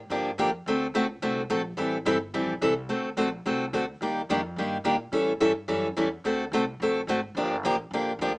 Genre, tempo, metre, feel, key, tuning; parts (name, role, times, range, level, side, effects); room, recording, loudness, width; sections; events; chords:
acoustic string swing (jazz manouche); 215 BPM; 4/4; swing 58% on 8ths; A4 = 440 Hz
upright bass; bass; 0.0-8.4 s; G1 to Bb2; -39 LUFS; equal
picked steel-string acoustic guitar; accompaniment; 0.1-8.3 s; D3 to A4; -24 LUFS; equal
light reverb; small speaker sound; -25 LUFS; side -28 dB against mid
0.0-8.4 A section
0.0 Gm9; 0.7 D7; 1.8 Am7; 2.9 D7; 4.0 Ebmaj9; 5.1 A7; 6.2 D7; 7.4 Gm9